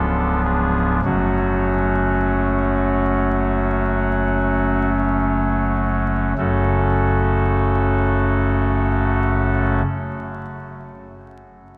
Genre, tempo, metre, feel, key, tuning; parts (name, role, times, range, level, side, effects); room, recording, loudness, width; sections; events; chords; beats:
classical, chorale-style piece for pipe organ; free time; F# minor; A4 = 441 Hz
pipe organ, soft reed; solo; 0.0-9.8 s; C#1 to A4; -20 LUFS; equal
wet cathedral reverb, RT60 6.1 s; dark, warm production, vinyl crackle; -19 LUFS; mono
0.0-6.4 A section; 6.4-11.8 B section
slowing down 0.0-6.4
0.0 C#7b9; 1.0 F#m
free time